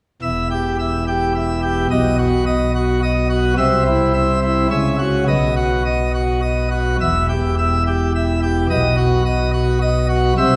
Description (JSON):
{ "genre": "classical, organ toccata", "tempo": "107 BPM", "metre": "3/4", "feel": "straight", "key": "E minor", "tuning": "A4 = 440 Hz", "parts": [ { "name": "pipe organ, plenum", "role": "solo", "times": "0.2-10.6 s", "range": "E1 to E5", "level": "-18 LUFS", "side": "equal", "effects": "none" } ], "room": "wet concert hall reverb, RT60 2.0 s", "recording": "heard from further back in the room", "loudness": "-18 LUFS", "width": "mono", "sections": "0.2-10.6 A section", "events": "none", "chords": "0.2 Em; 1.9 B; 3.6 C; 4.7 F#5/C#; 5.3 B; 7.0 Em; 8.7 B" }